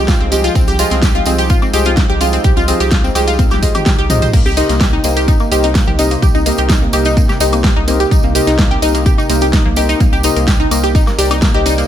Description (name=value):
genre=progressive house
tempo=127 BPM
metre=4/4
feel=straight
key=C minor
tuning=A4 = 441 Hz
part: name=warm analog pad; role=sustained chords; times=0.0-11.9 s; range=C3 to G5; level=-22 LUFS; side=right 2 dB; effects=chorus, sidechain pumping
part: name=deep mellow chord stab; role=stabs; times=0.0-11.8 s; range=Eb4 to Eb5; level=-20 LUFS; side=left 3 dB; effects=lush chorus, sidechain pumping, digital delay
part: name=round analog bass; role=bass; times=0.0-11.8 s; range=Bb1 to C2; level=-18 LUFS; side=equal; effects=sidechain pumping
part: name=analog pluck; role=arpeggios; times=0.1-11.8 s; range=Bb3 to C5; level=-17 LUFS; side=equal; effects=chorus, phaser, sidechain pumping, digital delay
part: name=electronic kick drum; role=drums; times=0.1-11.5 s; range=none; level=-13 LUFS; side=equal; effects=studio reverb
part: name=pop drum kit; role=drums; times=0.1-11.9 s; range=crash cymbal, hi-hat, snare drum, toms, woodblock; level=-20 LUFS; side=equal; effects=studio reverb
part: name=tambourine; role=percussion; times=0.1-11.9 s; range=none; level=-27 LUFS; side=right 5 dB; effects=none
part: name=congas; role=percussion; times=0.3-11.8 s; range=none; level=-27 LUFS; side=left 6 dB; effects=none
room=little or no reverb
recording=none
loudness=-10 LUFS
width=side -10 dB against mid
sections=0.0-11.9 A section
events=drum fill 3.4-4.3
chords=0.0 Fm9/C; 4.3 Cm7